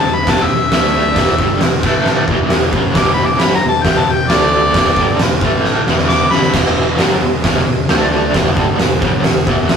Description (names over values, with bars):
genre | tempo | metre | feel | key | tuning
garage rock duo or trio | 134 BPM | 4/4 | straight | E minor | A4 = 440 Hz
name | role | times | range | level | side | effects
clear harmonica | melody | 0.0-6.5 s | D5 to D6 | -16 LUFS | left 2 dB | overdrive
crunchy overdriven guitar | riff | 0.0-9.8 s | E2 to D4 | -18 LUFS | right 1 dB | tremolo
picked electric bass | bass | 0.0-9.8 s | E1 to D2 | -24 LUFS | equal | none
oversized low-tuned drum kit | drums | 0.3-9.8 s | crash cymbal, hi-hat, kick drum, snare drum | -14 LUFS | equal | none
room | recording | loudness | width
light reverb | rough rehearsal-room recording, tube saturation | -11 LUFS | side -7 dB against mid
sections
0.0-6.5 A section; 6.5-9.8 B section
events
harmonica solo 0.0-6.5; drum fill 5.6-6.5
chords
0.0 E5; 0.7 D5; 1.2 Em; 1.8 A5; 2.3 E5; 4.3 D5; 4.7 Em; 5.4 A5; 5.9 E5; 7.9 D5; 8.3 Em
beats
0.27 0.72 | 1.17 1.61 2.06 2.51 | 2.95 3.40 3.85 4.30 | 4.75 5.19 5.64 6.09 | 6.54 6.99 7.44 7.89 | 8.34 8.79 9.24 9.69